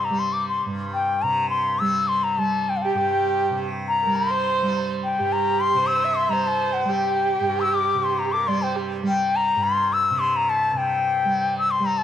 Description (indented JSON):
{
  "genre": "indian classical, Hindustani",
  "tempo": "104 BPM",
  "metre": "7/4",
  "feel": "straight",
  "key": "G raga bageshri",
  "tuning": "A4 = 440 Hz",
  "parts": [
    { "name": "bright reedy bansuri", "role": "melody", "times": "0.0-12.0 s", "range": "F5 to E6", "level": "-21 LUFS", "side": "left 4 dB", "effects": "tape echo" },
    { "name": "tanpura", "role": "drone", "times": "0.0-12.0 s", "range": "G2 to G3", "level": "-28 LUFS", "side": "right 3 dB", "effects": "cassette tape" },
    { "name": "clear erhu", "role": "second line", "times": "2.9-8.9 s", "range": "G4 to E5", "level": "-26 LUFS", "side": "right 10 dB", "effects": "cassette tape" }
  ],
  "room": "light reverb, studio reverb",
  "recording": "home recording on cassette",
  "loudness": "-20 LUFS",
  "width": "side -10 dB against mid",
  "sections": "0.0-10.7 A section; 10.7-12.0 B section",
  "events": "speeding up 0.0-12.0",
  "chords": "none",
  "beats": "0.34 0.93 1.53 2.12 | 2.70 3.29 3.88 4.46 5.04 5.62 6.19 | 6.77 7.34 7.91 8.48 9.05 9.61 10.18 | 10.74 11.30 11.85"
}